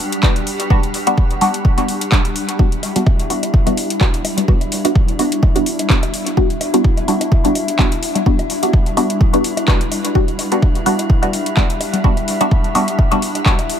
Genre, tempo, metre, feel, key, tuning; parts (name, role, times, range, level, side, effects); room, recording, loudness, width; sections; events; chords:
dub techno; 127 BPM; 4/4; swing 55% on 16ths; E minor; A4 = 442 Hz
granular cloud pad; sustained chords; 0.0-13.8 s; G3 to G4; -24 LUFS; left 1 dB; built-in reverb, sidechain pumping
deep house drum kit; drums; 0.0-13.8 s; handclaps, hi-hat; -23 LUFS; equal; overdrive
metallic inharmonic drone; texture; 0.0-13.8 s; E4 to F#5; -27 LUFS; left 2 dB; chorus, built-in reverb, sidechain pumping
filtered dub chord stab; stabs; 0.2-13.6 s; G3 to F#4; -19 LUFS; equal; phaser, dub echo
electronic kick drum; drums; 0.2-13.6 s; -14 LUFS; equal; overdrive
woodblock and congas; percussion; 2.8-13.7 s; -27 LUFS; left 4 dB; sidechain pumping on perc, dub echo
light reverb; -13 LUFS; side -9 dB against mid
0.0-13.8 A section
0.0 Em7